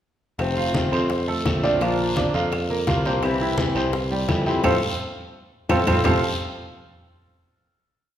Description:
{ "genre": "latin, Cuban son and guajira", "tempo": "170 BPM", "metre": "4/4", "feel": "straight", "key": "F major", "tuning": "A4 = 439 Hz", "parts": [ { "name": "fingerpicked swing-style acoustic guitar", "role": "accompaniment", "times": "0.4-6.2 s", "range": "F2 to F4", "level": "-26 LUFS", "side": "left 3 dB", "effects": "none" }, { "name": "picked electric bass", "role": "bass", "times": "0.4-6.2 s", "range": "F1 to F2", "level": "-26 LUFS", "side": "equal", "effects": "none" }, { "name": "bongos", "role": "percussion", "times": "0.4-6.1 s", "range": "none", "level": "-33 LUFS", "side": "left 4 dB", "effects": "none" }, { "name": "claves", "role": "percussion", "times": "0.4-6.1 s", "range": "none", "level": "-35 LUFS", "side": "right 3 dB", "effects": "none" }, { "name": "congas", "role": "percussion", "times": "0.4-6.1 s", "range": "none", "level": "-27 LUFS", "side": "equal", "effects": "none" }, { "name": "guiro", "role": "percussion", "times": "0.4-6.1 s", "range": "none", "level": "-33 LUFS", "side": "left 2 dB", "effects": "none" }, { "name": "clear grand piano", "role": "arpeggios", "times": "0.6-6.2 s", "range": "F3 to F5", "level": "-25 LUFS", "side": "right 2 dB", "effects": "none" } ], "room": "wet recital hall reverb, RT60 1.4 s", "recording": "recorded in a church or concert hall", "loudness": "-20 LUFS", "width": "side -10 dB against mid", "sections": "0.4-6.0 A section; 6.0-7.5 final chord", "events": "band accent 4.6-6.0; drum fill 5.0-6.0", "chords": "0.4 F; 1.8 Bb; 3.2 C; 4.6 F" }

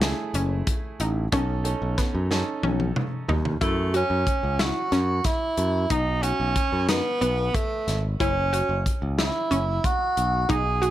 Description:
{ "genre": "progressive instrumental, band music in an uneven meter", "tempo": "183 BPM (eighths)", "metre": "7/8", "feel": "straight", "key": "F# dorian", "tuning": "A4 = 438 Hz", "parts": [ { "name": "clear baby grand piano", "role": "accompaniment", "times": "0.0-3.5 s", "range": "A3 to A4", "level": "-32 LUFS", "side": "right 4 dB", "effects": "none" }, { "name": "analog pluck", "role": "arpeggios", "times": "0.0-10.9 s", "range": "B3 to F#4", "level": "-29 LUFS", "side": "left 1 dB", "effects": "chorus" }, { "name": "modern bright picked electric bass", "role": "bass", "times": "0.0-10.9 s", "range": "F#1 to F#2", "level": "-26 LUFS", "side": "equal", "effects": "none" }, { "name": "modern studio drum kit", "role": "drums", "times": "0.0-10.9 s", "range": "hi-hat, kick drum, snare drum, toms", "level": "-27 LUFS", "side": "equal", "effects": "none" }, { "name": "clear tenor saxophone", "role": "melody", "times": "3.6-10.9 s", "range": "A3 to G#4", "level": "-25 LUFS", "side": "right 2 dB", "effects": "tape echo" } ], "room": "light reverb", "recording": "none", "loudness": "-22 LUFS", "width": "side -13 dB against mid", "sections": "0.0-3.6 A section; 3.6-10.9 B section", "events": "drum fill 2.3-3.6", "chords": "0.0 F#m7; 1.3 B7; 3.6 F#5; 5.9 B; 8.2 F#5" }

